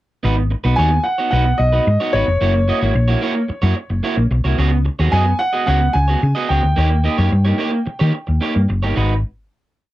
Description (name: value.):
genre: disco.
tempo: 110 BPM.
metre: 4/4.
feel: straight.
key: G# minor.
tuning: A4 = 440 Hz.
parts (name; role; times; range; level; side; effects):
electric guitar at the edge of break-up; accompaniment; 0.2-9.1 s; G#3 to D#5; -21 LUFS; right 3 dB; none.
hollow-body short-scale fingered electric bass; bass; 0.2-9.2 s; E#1 to D#3; -16 LUFS; equal; none.
dark baby grand piano; melody; 0.8-8.6 s; C#5 to G#5; -20 LUFS; equal; none.
room: little or no reverb.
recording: dry, close 1970s-style studio recording.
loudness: -15 LUFS.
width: side -16 dB against mid.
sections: 0.2-9.0 verse; 9.0-9.9 final chord.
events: none.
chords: 0.2 G#m7; 2.4 F#7; 4.6 C#7sus4; 6.8 D#7; 9.0 G#m7.